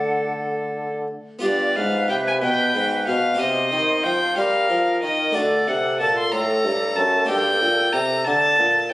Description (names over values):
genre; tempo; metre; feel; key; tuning
classical, baroque-style sonata movement with continuo; 62 BPM (dotted quarters); 6/8; straight; G minor; A4 = 440 Hz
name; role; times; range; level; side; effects
rich violin; melody; 0.0-8.9 s; A4 to C6; -20 LUFS; left 1 dB; none
silver concert flute; second line; 0.0-8.9 s; A4 to F#5; -28 LUFS; right 1 dB; none
harpsichord; accompaniment; 0.0-8.9 s; F#2 to A4; -28 LUFS; left 1 dB; none
warm bassoon; bass; 0.0-8.9 s; F#2 to G3; -23 LUFS; equal; none
room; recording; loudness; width
moderate recital hall reverb, RT60 1.4 s; recorded on a phone in the room, club reverb; -18 LUFS; side -18 dB against mid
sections
0.0-1.4 A section; 1.4-8.9 B section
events
none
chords
0.0 D; 1.4 G7; 3.4 Cm; 5.4 D; 7.3 Gm